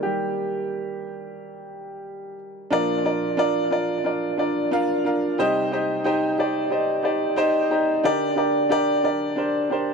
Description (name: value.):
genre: pop.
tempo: 90 BPM.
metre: 4/4.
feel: straight.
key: unclear.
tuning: A4 = 442 Hz.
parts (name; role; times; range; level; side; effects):
clear baby grand piano; solo; 0.0-9.9 s; Bb2 to Bb5; -21 LUFS; equal; tape echo.
room: moderate booth ambience, RT60 0.3 s.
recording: dry, close 1970s-style studio recording.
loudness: -20 LUFS.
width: side -4 dB against mid.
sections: 0.0-2.7 A section; 2.7-9.9 B section.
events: grand piano solo 0.0-2.7; grand piano fill 6.7-8.0.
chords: 0.0 Eb; 2.7 Bb; 5.4 Cm; 8.0 Gm/D.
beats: | 0.05 0.72 1.38 2.05 | 2.71 3.38 4.05 4.71 | 5.38 6.05 6.71 7.38 | 8.04 8.71 9.38.